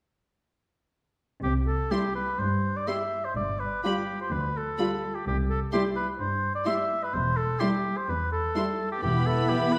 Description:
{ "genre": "quick classical-period movement for symphony orchestra", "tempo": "127 BPM", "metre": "4/4", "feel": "rubato", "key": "C major", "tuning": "A4 = 441 Hz", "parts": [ { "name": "warm oboe", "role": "second line", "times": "1.4-9.8 s", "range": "G4 to E5", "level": "-32 LUFS", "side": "equal", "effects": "none" }, { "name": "warm studio cello section", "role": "bass", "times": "1.4-9.8 s", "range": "C2 to E3", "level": "-35 LUFS", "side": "equal", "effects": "none" }, { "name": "warm studio double bass section", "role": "bass", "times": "1.4-9.5 s", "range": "E1 to C2", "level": "-33 LUFS", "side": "equal", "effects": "none" }, { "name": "clear studio violin section", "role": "melody", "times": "1.9-9.8 s", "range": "B5 to C6", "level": "-40 LUFS", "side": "equal", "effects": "none" }, { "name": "dark studio violin section", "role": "second line", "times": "1.9-9.8 s", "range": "E4 to F4", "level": "-36 LUFS", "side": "equal", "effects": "none" }, { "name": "warm studio viola section", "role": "accompaniment", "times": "1.9-9.8 s", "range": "G3 to B3", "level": "-33 LUFS", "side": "equal", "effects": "none" } ], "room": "wet recital hall reverb, RT60 1.4 s", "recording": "heard from further back in the room", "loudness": "-28 LUFS", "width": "mono", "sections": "1.4-9.8 A section", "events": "none", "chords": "1.4 C; 3.4 G; 5.3 C; 7.1 C/E; 9.0 E5" }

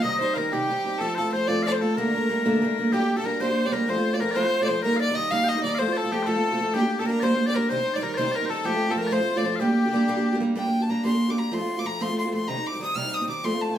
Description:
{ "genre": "celtic folk, Celtic jig", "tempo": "125 BPM (dotted quarters)", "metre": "6/8", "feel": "straight", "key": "G minor", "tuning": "A4 = 440 Hz", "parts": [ { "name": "bright fiddle", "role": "melody", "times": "0.0-13.8 s", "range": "G4 to F6", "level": "-26 LUFS", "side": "equal", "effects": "none" }, { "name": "loud bright bagpipes", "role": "second line", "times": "0.0-10.4 s", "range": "G4 to G5", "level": "-29 LUFS", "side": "left 4 dB", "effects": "none" }, { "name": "picked steel-string acoustic guitar", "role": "accompaniment", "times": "0.0-13.8 s", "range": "G2 to G4", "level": "-24 LUFS", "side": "right 1 dB", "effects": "none" } ], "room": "wet studio reverb, RT60 0.6 s", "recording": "heard from further back in the room", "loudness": "-22 LUFS", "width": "side -10 dB against mid", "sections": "0.0-2.9 A section; 2.9-10.6 B section; 10.6-13.8 B section", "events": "none", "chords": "0.0 Cm; 1.0 F; 2.0 Gmadd9; 2.9 Gm; 3.9 F; 4.8 Eb; 5.8 F; 6.7 Gm; 7.7 Cm; 8.7 F; 9.6 Gm; 11.5 F; 12.5 Cm" }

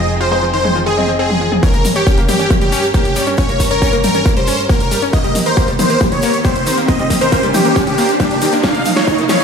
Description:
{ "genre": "uplifting trance", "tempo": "137 BPM", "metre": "4/4", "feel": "straight", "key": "unclear", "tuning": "A4 = 441 Hz", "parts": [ { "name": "supersaw chords", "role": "melody", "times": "0.0-9.4 s", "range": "G4 to F5", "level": "-17 LUFS", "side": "right 1 dB", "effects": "sidechain pumping, dub echo" }, { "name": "wide unison pluck", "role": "second line", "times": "0.0-1.5 s", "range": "Ab4 to Eb5", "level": "-28 LUFS", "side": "right 1 dB", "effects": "none" }, { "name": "dark chamber string section", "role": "sustained chords", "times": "0.0-9.4 s", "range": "Eb2 to G5", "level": "-23 LUFS", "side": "equal", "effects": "sidechain pumping" }, { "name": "plucky analog bass", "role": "bass", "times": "0.0-1.6 s", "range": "F1", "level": "-21 LUFS", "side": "equal", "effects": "sidechain pumping" }, { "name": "analog pluck", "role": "arpeggios", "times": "0.2-9.4 s", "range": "Eb3 to Db5", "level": "-21 LUFS", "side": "left 4 dB", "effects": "chorus, sidechain pumping, dub echo" }, { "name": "bright baby grand piano", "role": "second line", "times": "0.3-1.5 s", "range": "C5 to Eb5", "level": "-22 LUFS", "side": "equal", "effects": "ping-pong delay" }, { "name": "big-room dance drum kit", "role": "drums", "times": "0.6-9.4 s", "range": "hi-hat, snare drum, toms", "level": "-20 LUFS", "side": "left 1 dB", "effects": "none" }, { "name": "electronic kick drum", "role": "drums", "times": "1.6-9.2 s", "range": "none", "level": "-16 LUFS", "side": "equal", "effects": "none" }, { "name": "tube shaker", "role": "percussion", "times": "1.6-9.4 s", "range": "none", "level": "-28 LUFS", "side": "left 3 dB", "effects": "none" }, { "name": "riser", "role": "sound effects", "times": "4.3-9.4 s", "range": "none", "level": "-21 LUFS", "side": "right 2 dB", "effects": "none" } ], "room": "light reverb", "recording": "played on a big sound system in a bare room, stone room reverb, high-pass filter", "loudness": "-12 LUFS", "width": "side -6 dB against mid", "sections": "0.0-1.6 A section; 1.6-9.4 B section", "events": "build-up 1.6-9.4; riser 4.3-9.4; drum fill 8.6-9.4", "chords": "0.0 Fm7; 1.6 Gdim; 5.1 Eb; 8.6 Bbm" }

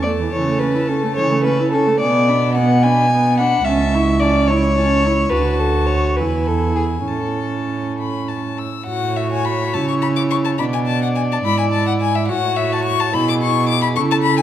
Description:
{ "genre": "quick classical-period movement for string quartet", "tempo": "66-74 BPM (dotted quarters)", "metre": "6/8", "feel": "rubato", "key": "A major", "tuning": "A4 = 439 Hz", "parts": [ { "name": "rich violin", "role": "melody", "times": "0.0-14.4 s", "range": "E5 to E6", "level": "-23 LUFS", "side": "left 8 dB", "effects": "none" }, { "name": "rich violin", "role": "second line", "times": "0.0-14.4 s", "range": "G#4 to G#5", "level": "-21 LUFS", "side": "left 2 dB", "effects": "none" }, { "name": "warm viola", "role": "accompaniment", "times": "0.0-14.4 s", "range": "E3 to F#4", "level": "-22 LUFS", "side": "right 2 dB", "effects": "none" }, { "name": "warm cello", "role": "bass", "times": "0.0-14.4 s", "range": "C#2 to C#3", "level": "-20 LUFS", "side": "right 3 dB", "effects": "none" } ], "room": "wet recital hall reverb, RT60 1.7 s", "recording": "dark, warm production", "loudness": "-15 LUFS", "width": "side -11 dB against mid", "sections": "0.0-8.9 A section; 8.9-14.4 B section", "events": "none", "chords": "0.3 A/C#; 2.0 G#dim/B; 3.7 A/C#; 5.3 D; 6.2 E; 7.1 A; 10.6 E7/B; 12.3 A" }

